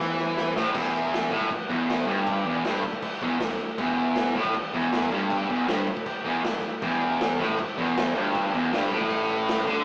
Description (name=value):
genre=garage rock duo or trio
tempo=158 BPM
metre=4/4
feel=straight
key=E minor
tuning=A4 = 440 Hz
part: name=combo organ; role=sustained chords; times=0.0-9.8 s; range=G4 to A5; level=-39 LUFS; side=equal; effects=none
part: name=fuzz guitar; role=riff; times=0.0-9.8 s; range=E2 to E3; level=-28 LUFS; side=equal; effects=distortion
part: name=fuzz picked electric bass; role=bass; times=0.0-9.8 s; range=E1 to E2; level=-40 LUFS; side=equal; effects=overdrive
part: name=raw garage drum kit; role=drums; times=0.0-9.8 s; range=crash cymbal, kick drum, snare drum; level=-32 LUFS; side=equal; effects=none
room=moderate stone room reverb, RT60 1.2 s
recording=rough rehearsal-room recording, warm saturation, small speaker sound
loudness=-26 LUFS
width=mono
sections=0.8-9.8 A section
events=drum fill 0.0-0.8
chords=0.0 C5; 0.8 Em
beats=0.37 | 0.75 1.13 1.51 1.89 | 2.27 2.65 3.03 3.41 | 3.79 4.17 4.54 4.92 | 5.30 5.68 6.07 6.44 | 6.82 7.20 7.58 7.96 | 8.34 8.72 9.10 9.48